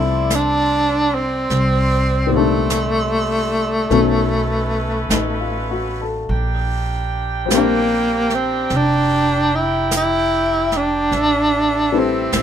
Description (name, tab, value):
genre	jazz ballad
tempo	50 BPM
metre	4/4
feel	swing 67% on 8ths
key	unclear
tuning	A4 = 440 Hz
part	breathy tenor saxophone	melody	0.0-12.4 s	A3 to E4	-18 LUFS	equal	none
part	warm baby grand piano	accompaniment	0.0-12.4 s	Bb2 to B4	-22 LUFS	left 7 dB	none
part	clear saxophone section	sustained chords	0.0-12.4 s	C4 to G5	-26 LUFS	right 4 dB	none
part	upright bass	bass	0.0-12.4 s	F1 to C2	-22 LUFS	equal	none
part	jazz brush drum kit	drums	0.3-12.4 s	brushed snare drum, hi-hat, snare drum	-26 LUFS	right 1 dB	none
room	moderate club reverb, RT60 0.5 s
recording	minimal, uncompressed stereo recording, faint mains hum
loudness	-15 LUFS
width	side -9 dB against mid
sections	0.0-12.4 A section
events	none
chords	0.0 F6; 1.5 Cm9; 3.9 B9; 6.3 Bb6; 11.1 Am7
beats	0.30 | 1.50 2.70 3.90 5.10 | 6.30 7.51 8.71 9.91 | 11.12 12.33